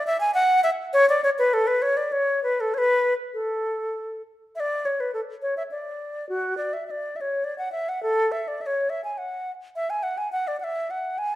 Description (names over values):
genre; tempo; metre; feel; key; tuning
classical, baroque-style fantasia for unaccompanied flute; 97-106 BPM; 3/4; rubato; A major, F# minor from 4.6 s; A4 = 441 Hz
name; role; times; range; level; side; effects
wooden flute; solo; 0.0-11.4 s; F#4 to G#5; -22 LUFS; equal; none
room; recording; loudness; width
wet recital hall reverb, RT60 1.3 s; dark, warm production; -22 LUFS; side -14 dB against mid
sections
0.0-4.6 A section; 4.6-11.4 A section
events
none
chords
none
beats
0.33 | 0.93 1.52 2.12 | 2.73 3.35 3.96 | 4.56 5.14 5.72 | 6.30 6.88 7.44 | 8.03 8.61 9.18 | 9.75 10.32 10.89